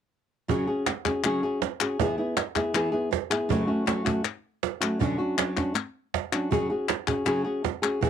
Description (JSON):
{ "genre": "flamenco", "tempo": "159 BPM", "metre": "4/4", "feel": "straight", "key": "unclear", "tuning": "A4 = 438 Hz", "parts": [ { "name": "flamenco guitar", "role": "melody", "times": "0.5-8.1 s", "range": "F#2 to G#4", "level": "-26 LUFS", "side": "left 1 dB", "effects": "none" }, { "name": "cajon", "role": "percussion", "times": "0.5-8.1 s", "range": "none", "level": "-28 LUFS", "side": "right 9 dB", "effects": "none" }, { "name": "palmas hand claps", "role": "percussion", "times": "0.9-8.0 s", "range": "none", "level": "-28 LUFS", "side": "left 12 dB", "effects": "none" } ], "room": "light reverb", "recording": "dry, close 1970s-style studio recording", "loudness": "-24 LUFS", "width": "side -8 dB against mid", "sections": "0.5-8.1 A section", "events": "none", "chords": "0.5 C#sus4; 2.0 E; 3.5 F#m; 5.0 Bmadd9 (rootless); 6.5 C#sus4" }